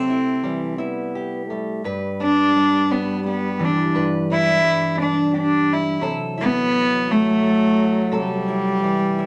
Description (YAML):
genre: acoustic folk-pop ballad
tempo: 57 BPM (dotted quarters)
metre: 6/8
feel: straight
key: unclear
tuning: A4 = 439 Hz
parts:
  - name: warm cello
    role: melody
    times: 0.0-9.3 s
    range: G3 to E4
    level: -21 LUFS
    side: equal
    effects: none
  - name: mellow French horn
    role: second line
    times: 0.0-9.3 s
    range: E3 to B3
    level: -30 LUFS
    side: equal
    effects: none
  - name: fingerpicked old ladder-braced acoustic guitar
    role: accompaniment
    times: 0.0-9.3 s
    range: G2 to B4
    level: -29 LUFS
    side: equal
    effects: none
  - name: concert harp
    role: arpeggios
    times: 0.0-9.3 s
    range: E3 to A3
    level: -31 LUFS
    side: equal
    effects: none
room: moderate club reverb, RT60 0.5 s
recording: none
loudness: -20 LUFS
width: mono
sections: 0.0-9.3 A section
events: none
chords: 0.0 C6; 1.8 G; 6.0 C6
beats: 0.79 | 1.85 2.90 | 3.94 4.98 | 6.02 7.07 | 8.12 9.17